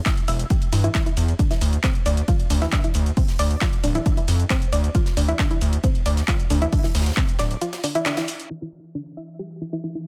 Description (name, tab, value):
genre	driving peak-time techno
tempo	135 BPM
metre	4/4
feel	straight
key	unclear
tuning	A4 = 441 Hz
part	analog pluck	riff	0.1-10.0 s	C4 to E5	-30 LUFS	equal	chorus, sidechain pumping, tape echo
part	electronic kick drum	drums	0.1-7.3 s	none	-24 LUFS	equal	none
part	modern studio drum kit	drums	0.1-9.9 s	hi-hat, ride cymbal, snare drum	-41 LUFS	equal	none
part	techno drum kit	drums	0.1-10.0 s	crash cymbal, handclaps, hi-hat, shaker	-31 LUFS	equal	none
part	gritty driven synth bass	bass	0.3-7.6 s	D1 to G2	-22 LUFS	equal	tube saturation, sidechain pumping
part	analog drone	drone	8.8-10.1 s	E3	-39 LUFS	equal	chorus, sidechain pumping
room	little or no reverb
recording	low-pass filter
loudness	-21 LUFS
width	mono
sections	0.0-8.5 A section; 8.5-10.1 B section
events	break 7.6-8.5; band accent 8.1; filter sweep on synth arpeggio sound 8.5-10.1; filter sweep 8.5-10.1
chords	0.0 Em; 1.4 Dm; 8.5 Em